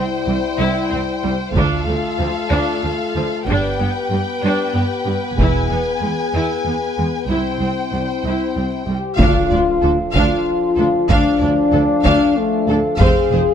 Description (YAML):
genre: cinematic, epic orchestral film score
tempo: 94 BPM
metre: 3/4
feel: straight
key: D minor from 9.2 s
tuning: A4 = 436 Hz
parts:
  - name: clear symphonic violin section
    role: melody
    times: 0.0-13.4 s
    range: A4 to G#5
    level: -26 LUFS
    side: left 3 dB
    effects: none
  - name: warm symphonic violin section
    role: second line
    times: 0.0-13.4 s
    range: Ab4 to F5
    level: -26 LUFS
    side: left 2 dB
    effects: none
  - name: rich chamber viola section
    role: accompaniment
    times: 0.0-13.4 s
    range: F3 to E4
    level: -24 LUFS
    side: right 2 dB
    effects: none
  - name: mellow French horn section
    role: sustained chords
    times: 0.0-13.5 s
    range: G3 to A4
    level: -20 LUFS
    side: left 5 dB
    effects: none
  - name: rich symphonic cello section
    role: bass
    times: 0.0-13.4 s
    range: C2 to G2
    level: -23 LUFS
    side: right 2 dB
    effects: none
  - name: rich symphonic double bass section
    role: bass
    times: 1.5-13.4 s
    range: E1 to D2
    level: -23 LUFS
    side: right 3 dB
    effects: none
  - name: taiko ensemble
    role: drums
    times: 1.6-13.5 s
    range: none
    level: -18 LUFS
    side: equal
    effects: none
  - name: pipe organ, stopped flute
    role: sustained chords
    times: 9.2-13.5 s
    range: C4 to F5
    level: -25 LUFS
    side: right 5 dB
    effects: none
  - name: warm trombone section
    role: sustained chords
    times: 9.2-13.5 s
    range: F3 to D4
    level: -26 LUFS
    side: right 4 dB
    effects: none
  - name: mellow tuba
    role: bass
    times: 9.2-13.4 s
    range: F1 to D2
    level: -25 LUFS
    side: right 4 dB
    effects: none
  - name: timpani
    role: percussion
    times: 9.2-10.1 s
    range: D3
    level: -26 LUFS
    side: left 1 dB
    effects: none
  - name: impact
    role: sound effects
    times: 9.3-11.1 s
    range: none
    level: -29 LUFS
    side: equal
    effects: none
room: light reverb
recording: close, detailed microphones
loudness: -15 LUFS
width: side -8 dB against mid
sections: 0.0-9.2 A section; 9.2-13.5 B section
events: build-up 0.0-9.2; impact 9.2-11.1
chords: 0.0 C; 1.5 Dm; 3.5 G; 5.4 E; 7.3 C; 9.2 Dm; 13.0 Fm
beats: 0.27 0.91 | 1.54 2.18 2.82 | 3.46 4.10 4.73 | 5.37 6.01 6.64 | 7.28 7.92 8.55 | 9.19 9.82 10.46 | 11.10 11.73 12.37 | 13.00